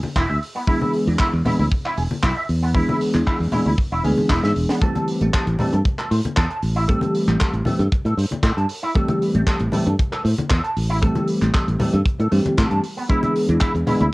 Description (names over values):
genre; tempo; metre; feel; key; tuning
nu-disco, nu disco; 116 BPM; 4/4; straight; A minor; A4 = 440 Hz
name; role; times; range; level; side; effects
modern bright fingered electric bass; bass; 0.0-14.1 s; E1 to A2; -20 LUFS; equal; none
congas; percussion; 0.0-14.0 s; none; -26 LUFS; left 2 dB; none
electric guitar with an envelope filter; riff; 0.2-14.0 s; E3 to A5; -26 LUFS; right 1 dB; ensemble chorus, low-pass filter, cassette tape
kick drum; drums; 0.2-13.7 s; none; -20 LUFS; equal; cassette tape
tight funk drum kit; drums; 0.2-14.1 s; handclaps, hi-hat, snare drum; -30 LUFS; equal; cassette tape
bell-like tine electric piano; accompaniment; 0.7-14.0 s; E3 to G#4; -22 LUFS; equal; phaser, cassette tape
room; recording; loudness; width
moderate studio reverb, RT60 0.5 s; home recording on cassette; -17 LUFS; side -21 dB against mid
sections
0.0-14.1 A section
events
filter sweep on clean electric guitar 0.0-14.1; drum fill 4.3-4.8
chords
0.0 E7; 4.8 Am7; 12.8 E7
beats
0.16 | 0.68 1.20 1.71 2.23 | 2.75 3.27 3.78 4.30 | 4.82 5.33 5.85 6.37 | 6.89 7.40 7.92 8.44 | 8.96 9.47 9.99 10.51 | 11.02 11.54 12.06 12.57 | 13.09 13.61